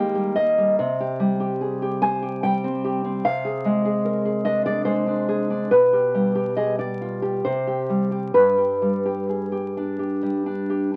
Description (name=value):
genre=romantic piece for solo classical guitar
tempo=63-76 BPM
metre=3/4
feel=rubato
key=C minor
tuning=A4 = 440 Hz
part: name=nylon-string guitar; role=solo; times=0.0-11.0 s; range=G2 to Ab5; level=-22 LUFS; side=equal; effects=none
room=light reverb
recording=very old 78 rpm record, vinyl crackle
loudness=-22 LUFS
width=mono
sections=0.0-11.0 A section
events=none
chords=0.0 Eb; 0.8 Cm; 3.2 Dm7b5/C; 5.7 G7/B; 7.5 C5; 8.4 G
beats=| 0.79 1.60 2.43 | 3.24 4.04 4.86 | 5.72 6.58 7.46 | 8.36 9.31 10.24